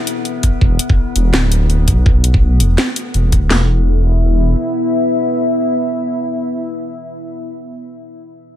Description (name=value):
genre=half-time drum and bass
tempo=166 BPM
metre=4/4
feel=swing 55% on 16ths, half-time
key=unclear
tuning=A4 = 440 Hz
part: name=deep dark ambient pad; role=sustained chords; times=0.0-7.2 s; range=B3 to E5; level=-20 LUFS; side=left 1 dB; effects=chorus, built-in reverb, sidechain pumping
part: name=metallic inharmonic drone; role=texture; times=0.0-3.5 s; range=B3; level=-28 LUFS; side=left 5 dB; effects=chorus, built-in reverb
part: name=drum and bass drum kit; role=drums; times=0.1-3.4 s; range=hi-hat, snare drum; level=-19 LUFS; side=equal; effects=none
part: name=drum and bass drum kit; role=drums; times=0.4-3.6 s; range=hi-hat, kick drum, snare drum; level=-13 LUFS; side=equal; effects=none
part: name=dark detuned saw bass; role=bass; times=0.6-4.5 s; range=D1 to B1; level=-12 LUFS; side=equal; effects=none
room=light reverb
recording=none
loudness=-12 LUFS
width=side -11 dB against mid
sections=0.0-3.5 A section; 3.5-6.4 B section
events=none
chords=0.0 E5